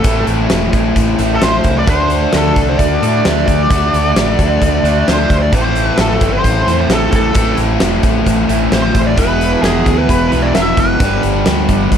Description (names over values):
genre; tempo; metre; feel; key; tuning
classic rock; 132 BPM; 4/4; straight; A dorian; A4 = 442 Hz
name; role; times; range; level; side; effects
fuzz lead guitar; melody; 0.0-11.2 s; G#4 to E5; -17 LUFS; equal; wah, distortion, slapback echo
biting overdriven guitar; riff; 0.0-12.0 s; E2 to G4; -17 LUFS; left 11 dB; none
raw garage guitar; riff; 0.0-12.0 s; E2 to D4; -18 LUFS; right 11 dB; overdrive
growling fingered electric bass; bass; 0.0-12.0 s; E1 to A2; -18 LUFS; equal; overdrive
huge arena drum kit; drums; 0.0-12.0 s; hi-hat, kick drum, snare drum; -16 LUFS; equal; none
room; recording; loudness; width
light reverb, studio reverb; none; -11 LUFS; side -8 dB against mid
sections
0.0-12.0 A section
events
none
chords
0.0 Am; 1.9 D; 5.5 Am; 9.2 E; 11.0 G7